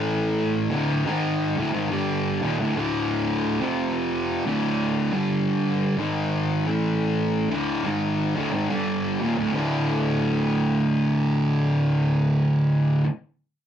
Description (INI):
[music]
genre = metal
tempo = 70 BPM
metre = 4/4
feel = swing 60% on 8ths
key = D minor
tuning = A4 = 435 Hz
[part]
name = fuzz guitar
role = solo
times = 0.0-13.1 s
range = D2 to A3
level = -21 LUFS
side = equal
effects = distortion
[sound]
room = moderate studio ambience, RT60 0.4 s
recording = dark, warm production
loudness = -21 LUFS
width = side -9 dB against mid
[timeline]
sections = 0.0-2.7 A section; 2.7-9.6 B section; 9.6-13.0 C section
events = none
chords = 0.0 A5; 0.6 D5; 3.6 F5; 4.4 D5; 5.1 G5; 5.9 G#5; 6.6 A5; 7.4 D5